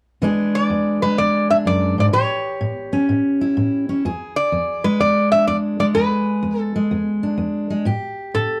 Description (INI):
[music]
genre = blues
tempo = 125 BPM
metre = 4/4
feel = swing 67% on 8ths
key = E mixolydian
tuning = A4 = 441 Hz
[part]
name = fingerpicked steel-string acoustic guitar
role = accompaniment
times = 0.2-8.6 s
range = E2 to G#4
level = -21 LUFS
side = equal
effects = none
[part]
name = lap resonator guitar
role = melody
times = 0.6-8.6 s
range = A4 to E5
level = -22 LUFS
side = equal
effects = none
[sound]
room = moderate small room reverb, RT60 0.5 s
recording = dark, warm production, faint mains hum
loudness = -19 LUFS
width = mono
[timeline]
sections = 0.2-8.6 A section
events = none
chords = 0.2 E7; 2.1 A7; 4.0 E7; 7.9 A7(no3)